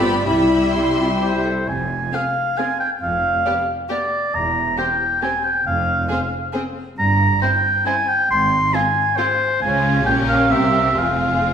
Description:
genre	quick classical-period movement for symphony orchestra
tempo	126-139 BPM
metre	3/4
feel	rubato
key	F minor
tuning	A4 = 438 Hz
part	rich chamber violin section	melody	0.0-11.5 s	Ab4 to C6	-30 LUFS	left 3 dB	none
part	bright clarinet	second line	0.0-1.7 s	E4 to A4	-24 LUFS	left 1 dB	none
part	flute section	second line	0.0-1.4 s	D5 to E5	-29 LUFS	left 4 dB	none
part	rich chamber violin section	second line	0.0-11.5 s	E4 to E5	-29 LUFS	left 2 dB	none
part	rich studio viola section	accompaniment	0.0-11.5 s	G3 to E4	-25 LUFS	equal	none
part	warm bassoon	accompaniment	0.0-1.4 s	G3	-27 LUFS	right 2 dB	none
part	dark French horn section	sustained chords	0.0-1.4 s	G3 to F4	-24 LUFS	left 3 dB	none
part	rich symphonic cello section	bass	0.0-11.5 s	E2 to Db3	-26 LUFS	right 2 dB	none
part	warm chamber double bass section	bass	0.0-11.5 s	E1 to Db2	-26 LUFS	right 2 dB	none
part	warm oboe	second line	1.2-11.5 s	C5 to C6	-18 LUFS	equal	none
room	wet recital hall reverb, RT60 1.5 s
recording	recorded in a church or concert hall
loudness	-16 LUFS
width	side -8 dB against mid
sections	0.0-1.7 A section; 1.7-11.5 B section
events	none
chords	0.3 C; 1.7 Fm; 3.0 G7/F (rootless); 4.3 C7/E; 5.7 F5; 7.0 C7(no3)/G; 8.3 Fm/Ab (rootless); 9.6 Db; 10.1 Gm7b5/Bb; 10.5 C7; 11.0 Fm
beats	| 0.27 0.75 1.21 | 1.68 2.13 2.58 | 3.02 3.46 3.90 | 4.35 4.79 5.22 | 5.67 6.11 6.54 | 6.98 7.42 7.86 | 8.30 8.74 9.18 | 9.62 10.06 10.51 | 10.98 11.46

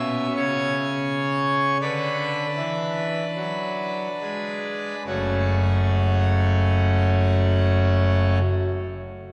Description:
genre	classical, chorale-style piece for pipe organ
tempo	35-43 BPM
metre	4/4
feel	rubato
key	F# minor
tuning	A4 = 440 Hz
part	pipe organ, full organ	solo	0.0-8.4 s	F#1 to E5	-23 LUFS	equal	none
room	wet church reverb, RT60 3.5 s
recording	recorded in a church or concert hall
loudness	-23 LUFS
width	mono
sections	0.0-5.1 A section; 5.1-9.3 B section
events	slowing down 0.0-5.1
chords	0.0 A#dim (rootless); 1.8 Bm/D; 5.1 F#m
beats	0.37 1.81 3.36 | 5.07 6.77

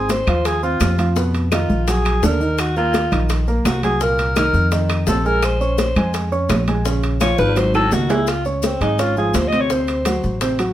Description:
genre	Afro-Cuban jazz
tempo	169 BPM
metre	4/4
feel	straight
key	Bb minor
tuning	A4 = 440 Hz
part	growling alto saxophone	melody	0.0-10.4 s	Ab3 to Eb5	-21 LUFS	left 1 dB	none
part	warm concert grand piano	accompaniment	0.0-10.7 s	Bb2 to Db6	-22 LUFS	right 2 dB	none
part	upright bass	bass	0.0-10.7 s	Ab1 to F2	-20 LUFS	equal	none
part	bongos	percussion	0.1-10.7 s	none	-27 LUFS	left 6 dB	none
part	congas	percussion	0.1-10.7 s	none	-26 LUFS	equal	none
part	maracas	percussion	0.1-10.7 s	none	-35 LUFS	left 5 dB	none
part	timbales	percussion	0.1-10.7 s	none	-27 LUFS	right 4 dB	none
part	claves	percussion	0.3-7.9 s	none	-31 LUFS	left 4 dB	none
room	light reverb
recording	none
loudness	-16 LUFS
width	side -12 dB against mid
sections	0.0-8.3 A section; 8.3-10.7 A section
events	alto saxophone solo 0.0-10.7; drum fill 7.2-8.3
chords	0.0 Ab6; 1.2 Bmaj7#11; 1.9 Bbaug7; 2.6 Ebmadd9; 4.0 Cm7; 4.7 F5; 5.4 Bbm9; 7.6 Ab5; 8.3 Dbmaj7; 9.7 D7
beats	0.10 0.45 0.81 | 1.16 1.52 1.87 2.23 | 2.59 2.94 3.30 3.65 | 4.01 4.37 4.72 5.08 | 5.43 5.79 6.14 6.50 | 6.85 7.21 7.57 7.92 | 8.28 8.63 8.99 9.34 | 9.70 10.06 10.41

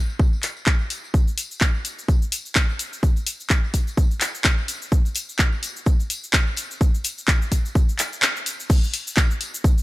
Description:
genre	house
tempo	127 BPM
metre	4/4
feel	swing 56% on 16ths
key	none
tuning	none
part	tambourine	percussion	0.1-9.8 s	none	-37 LUFS	left 3 dB	none
part	electronic kick drum	drums	0.2-9.7 s	none	-18 LUFS	equal	none
part	house drum kit	drums	0.4-9.8 s	crash cymbal, handclaps, hi-hat, shaker	-23 LUFS	equal	none
room	digital ambience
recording	dry, gritty hardware recording, transformer saturation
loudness	-19 LUFS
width	side -18 dB against mid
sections	0.0-8.7 A section; 8.7-9.8 B section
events	kick drops out 8.2-8.7; drop 8.7-9.8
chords	none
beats	0.20 0.67 | 1.14 1.61 2.08 2.56 | 3.03 3.50 3.97 4.45 | 4.92 5.39 5.86 6.34 | 6.81 7.28 7.75 8.23 | 8.70 9.17 9.64

